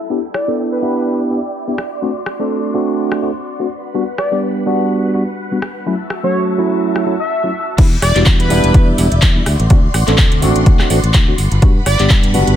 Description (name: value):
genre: filtered disco house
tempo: 125 BPM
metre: 4/4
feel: swing 56% on 16ths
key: E minor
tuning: A4 = 440 Hz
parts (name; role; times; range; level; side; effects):
- phased string machine; sustained chords; 0.0-12.6 s; E4 to G6; -25 LUFS; left 1 dB; ensemble chorus, phaser, sidechain pumping, low-pass filter
- tine electric piano; accompaniment; 0.1-12.6 s; F#3 to A4; -18 LUFS; right 1 dB; phaser, sidechain pumping, low-pass filter
- analog synth brass; melody; 0.3-1.2, 4.2-8.9, 11.9-12.0 s; B4 to E5; -21 LUFS; equal; chorus, sidechain pumping, low-pass filter
- house drum kit; drums; 0.3-12.6 s; crash cymbal, handclaps, hi-hat, rim click; -20 LUFS; equal; low-pass filter on snare, sidechain pumping on hats, low-pass filter on hats, sidechain pumping on cymbals, low-pass filter on cymbals
- fingered electric bass; bass; 7.8-12.5 s; E1 to G2; -15 LUFS; equal; sidechain pumping, low-pass filter
- electronic kick drum; drums; 7.8-12.2 s; none; -11 LUFS; equal; overdrive
room: light reverb, digital ambience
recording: none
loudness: -12 LUFS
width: side -11 dB against mid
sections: 0.0-7.8 A section; 7.8-12.6 B section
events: filter sweep 0.0-7.8; drop 7.8-12.6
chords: 0.1 Em7; 1.8 D7; 3.7 Gmaj7; 5.9 F#m7; 7.8 Em7; 9.5 D7; 11.4 Gmaj7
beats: | 0.10 0.58 1.06 1.54 | 2.02 2.50 2.98 3.46 | 3.94 4.42 4.90 5.38 | 5.86 6.34 6.82 7.30 | 7.78 8.26 8.74 9.22 | 9.70 10.18 10.66 11.14 | 11.62 12.10